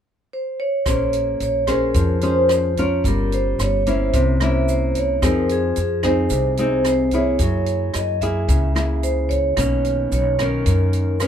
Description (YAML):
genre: bossa nova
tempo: 110 BPM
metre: 4/4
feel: straight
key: Bb minor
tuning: A4 = 440 Hz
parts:
  - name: vibraphone with medium hard mallets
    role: melody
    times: 0.3-11.3 s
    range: Ab4 to Fb5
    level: -22 LUFS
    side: right 1 dB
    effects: none
  - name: nylon-string guitar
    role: accompaniment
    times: 0.9-11.3 s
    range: F#2 to C5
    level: -21 LUFS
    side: left 1 dB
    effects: none
  - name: upright bass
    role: bass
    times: 0.9-11.3 s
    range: G1 to Gb2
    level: -22 LUFS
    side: equal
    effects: none
  - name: open jazz drum kit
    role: drums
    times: 0.9-11.3 s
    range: hi-hat, kick drum, rim click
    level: -26 LUFS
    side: equal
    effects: none
  - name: tube shaker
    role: percussion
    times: 0.9-11.3 s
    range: none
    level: -38 LUFS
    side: right 8 dB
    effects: none
room: light reverb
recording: none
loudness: -17 LUFS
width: side -8 dB against mid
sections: 0.9-11.3 A section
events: none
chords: 0.0 N.C.; 0.9 Bbm9; 3.0 Gm7b5; 4.1 C7b9; 5.2 Fm7; 7.4 Gb9; 9.6 Bmaj9